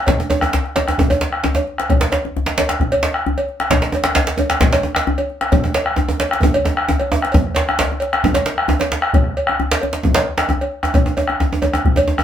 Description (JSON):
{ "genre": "west african traditional, West African drum ensemble", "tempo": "132 BPM", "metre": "4/4", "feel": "straight", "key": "none", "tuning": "none", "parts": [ { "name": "bombo", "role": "percussion", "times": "0.1-12.2 s", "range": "none", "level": "-18 LUFS", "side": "left 1 dB", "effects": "none" }, { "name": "cowbell", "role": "percussion", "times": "0.1-12.1 s", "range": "none", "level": "-21 LUFS", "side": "equal", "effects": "none" }, { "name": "djembe", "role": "percussion", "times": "0.1-12.2 s", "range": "none", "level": "-22 LUFS", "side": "left 2 dB", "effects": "none" }, { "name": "djembe", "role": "percussion", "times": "0.1-12.2 s", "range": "none", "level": "-19 LUFS", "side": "right 2 dB", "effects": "none" } ], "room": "wet studio ambience, RT60 0.5 s", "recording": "band playing live in one room", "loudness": "-15 LUFS", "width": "side -10 dB against mid", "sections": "0.0-8.2 A section; 8.2-12.2 B section", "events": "drum fill 6.4-8.2", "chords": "none" }